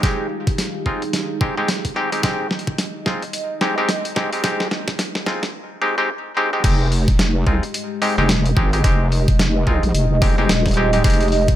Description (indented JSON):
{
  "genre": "glitch hop",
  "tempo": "109 BPM",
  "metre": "4/4",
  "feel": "swing 59% on 16ths",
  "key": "F minor",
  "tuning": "A4 = 439 Hz",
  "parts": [
    { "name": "dark analog pad", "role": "sustained chords", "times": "0.0-11.6 s", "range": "Ab3 to F5", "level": "-26 LUFS", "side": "right 1 dB", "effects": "chorus, sidechain pumping" },
    { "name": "bright clav", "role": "stabs", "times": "0.0-11.3 s", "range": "Ab3 to G4", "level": "-22 LUFS", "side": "equal", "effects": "sidechain pumping, digital delay" },
    { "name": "boom bap sampler-style drum kit", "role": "drums", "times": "0.0-11.6 s", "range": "crash cymbal, hi-hat, snare drum", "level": "-23 LUFS", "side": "equal", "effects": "studio reverb" },
    { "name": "electronic kick drum", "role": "drums", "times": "0.0-11.6 s", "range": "none", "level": "-19 LUFS", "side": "equal", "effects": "overdrive, studio reverb" },
    { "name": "wobble bass", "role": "bass", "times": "6.6-11.6 s", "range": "Eb1 to C2", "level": "-18 LUFS", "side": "equal", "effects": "chorus" }
  ],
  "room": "little or no reverb",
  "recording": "high-pass filter",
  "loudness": "-17 LUFS",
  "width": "side -12 dB against mid",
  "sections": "0.0-6.6 A section; 6.6-11.6 B section",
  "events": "build-up 0.0-6.6; drum fill 0.0-5.5; filter sweep on analog synth pad 0.0-6.6; drop 6.6-11.6",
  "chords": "0.0 Fm9"
}